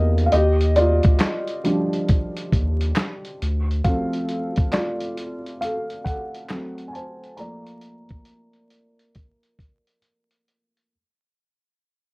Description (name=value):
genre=lo-fi hip hop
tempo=68 BPM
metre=4/4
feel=swing 63% on 16ths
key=unclear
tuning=A4 = 440 Hz
part: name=felt-muted upright piano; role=accompaniment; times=0.0-10.9 s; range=Eb3 to Bb5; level=-24 LUFS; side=equal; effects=cassette tape, low-pass filter
part: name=saturated sub bass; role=bass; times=0.0-3.8 s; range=D2 to E2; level=-19 LUFS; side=equal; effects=none
part: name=lo-fi sampler-style drum kit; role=drums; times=0.2-10.9 s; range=handclaps, hi-hat, kick drum, snare drum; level=-22 LUFS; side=equal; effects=none
room=light reverb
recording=worn, warbling old tape, cassette tape, vinyl crackle, warbly pitch drift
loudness=-19 LUFS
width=side -28 dB against mid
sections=0.0-10.9 A section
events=fade-out 0.0-10.9; felt piano solo 0.0-10.9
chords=0.3 Ebmaj7; 3.4 Dm7; 6.5 F#dim; 7.4 Bbmaj7/F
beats=| 0.32 1.20 2.08 2.97 | 3.85 4.73 5.61 6.50 | 7.38 8.26 9.14 10.03